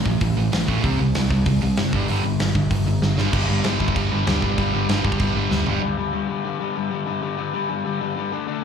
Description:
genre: punk rock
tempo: 193 BPM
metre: 4/4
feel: straight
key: unclear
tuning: A4 = 443 Hz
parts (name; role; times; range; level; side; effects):
- overdriven electric guitar; riff; 0.0-8.6 s; G2 to D4; -24 LUFS; left 8 dB; none
- sludgy distorted guitar; riff; 0.0-5.8 s; G2 to C4; -24 LUFS; right 10 dB; overdrive
- hollow-body short-scale picked electric bass; bass; 0.0-5.8 s; F#1 to D2; -23 LUFS; equal; none
- big rock drum kit; drums; 0.1-5.7 s; crash cymbal, hi-hat, kick drum, snare drum, toms; -25 LUFS; equal; none
room: light reverb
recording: live gig heard through the venue's PA, club reverb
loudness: -19 LUFS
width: side -7 dB against mid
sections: 0.0-3.3 A section; 3.3-5.8 B section; 5.8-8.6 C section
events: drum fill 3.0-3.3, 5.5-5.8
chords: 0.0 A5; 0.8 C5; 1.9 G5

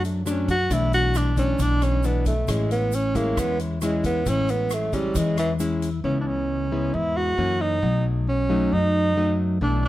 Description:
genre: bossa nova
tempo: 135 BPM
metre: 4/4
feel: straight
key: A major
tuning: A4 = 436 Hz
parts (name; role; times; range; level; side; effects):
- breathy tenor saxophone; melody; 0.0-9.9 s; E3 to F#4; -24 LUFS; right 1 dB; none
- nylon-string guitar; accompaniment; 0.0-9.9 s; F#2 to E4; -25 LUFS; left 2 dB; none
- upright bass; bass; 0.0-9.9 s; A1 to F#2; -26 LUFS; equal; none
- swinging big-band drum kit; drums; 0.0-5.9 s; hi-hat, kick drum, rim click; -32 LUFS; equal; none
- egg shaker; percussion; 0.0-6.0 s; none; -42 LUFS; right 9 dB; none
room: light reverb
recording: dark, warm production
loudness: -20 LUFS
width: side -15 dB against mid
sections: 0.0-6.0 A section; 6.0-9.9 B section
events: tenor saxophone solo 0.0-6.0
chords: 0.0 Bm7 (rootless); 0.7 E7sus4/B; 2.5 Amaj7; 6.0 C#m7; 7.4 F#7; 7.8 B7

